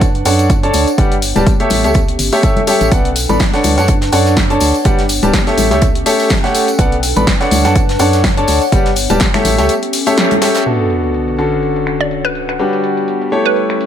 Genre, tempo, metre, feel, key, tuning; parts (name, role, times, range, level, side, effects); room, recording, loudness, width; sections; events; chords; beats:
piano house; 124 BPM; 4/4; swing 56% on 16ths; A4 = 440 Hz
clear concert grand piano; riff; 0.0-13.9 s; B2 to B5; -15 LUFS; left 1 dB; sidechain pumping, low-pass filter, digital delay
organ-like FM bass; bass; 0.0-9.7 s; D1 to F#2; -17 LUFS; equal; sidechain pumping
electronic kick drum; drums; 0.0-9.3 s; -14 LUFS; equal
punchy analog drum machine; drums; 0.0-13.9 s; crash cymbal, finger snaps, hi-hat, snare drum; -19 LUFS; left 2 dB; low-pass filter on hats, low-pass filter on snare, low-pass filter on cymbals, low-pass filter on room
tambourine and congas; percussion; 0.0-10.6 s; -22 LUFS; left 2 dB
warbly tape-like pad; texture; 0.0-13.9 s; D3 to A5; -20 LUFS; equal; chorus, built-in reverb, sidechain pumping
gated 80s drum kit; drums; 2.9-13.9 s; hi-hat, snare drum; -26 LUFS; right 2 dB; sidechain pumping on hats, high-pass filter on hats, low-pass filter on hats, high-pass filter on snare, low-pass filter on snare, high-pass filter on room, low-pass filter on room
sub drop; sound effects; 10.7-12.6 s; -23 LUFS; equal
hollow square pluck; melody; 12.0-13.6 s; B4 to D5; -18 LUFS; right 4 dB; chorus, digital delay
light reverb, small room ambience; -11 LUFS; side -9 dB against mid
0.0-10.7 A section; 10.7-13.9 B section
band accent 10.2; impact 10.7-12.6
0.0 Dmaj7; 1.0 Gmaj7; 1.7 A7; 2.9 Bm7; 3.6 Dmaj7; 4.9 Gmaj7; 5.6 A7; 6.8 Bm7; 7.5 Dmaj7; 8.7 Gmaj7; 9.4 A7; 10.7 Bm7; 11.4 Dmaj7; 12.6 Gmaj7; 13.3 A7
0.01 0.50 | 0.98 1.47 1.95 2.43 | 2.92 3.40 3.88 4.37 | 4.85 5.34 5.82 6.30 | 6.79 7.27 7.76 8.24 | 8.72 9.21 9.69 10.18 | 10.66 11.14 11.63 12.11 | 12.59 13.08 13.56